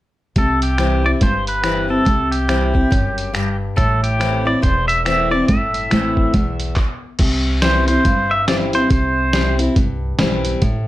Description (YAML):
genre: honky-tonk and classic country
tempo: 140 BPM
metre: 4/4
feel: swing 60% on 8ths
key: unclear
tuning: A4 = 440 Hz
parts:
  - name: pedal steel guitar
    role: melody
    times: 0.4-9.6 s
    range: G4 to E5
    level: -20 LUFS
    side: equal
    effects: none
  - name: picked steel-string acoustic guitar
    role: accompaniment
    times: 0.4-10.9 s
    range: E2 to E4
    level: -20 LUFS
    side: left 1 dB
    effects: none
  - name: upright bass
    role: bass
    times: 0.4-10.9 s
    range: E1 to C2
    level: -20 LUFS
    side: equal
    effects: none
  - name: lo-fi sampler-style drum kit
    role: drums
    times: 0.4-10.7 s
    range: crash cymbal, finger snaps, handclaps, hi-hat, kick drum, snare drum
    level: -20 LUFS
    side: equal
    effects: none
room: light reverb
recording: none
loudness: -15 LUFS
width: side -15 dB against mid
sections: 0.4-7.2 A section; 7.2-10.9 B section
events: stop 6.8-7.2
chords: 0.4 C; 3.8 Am; 7.2 C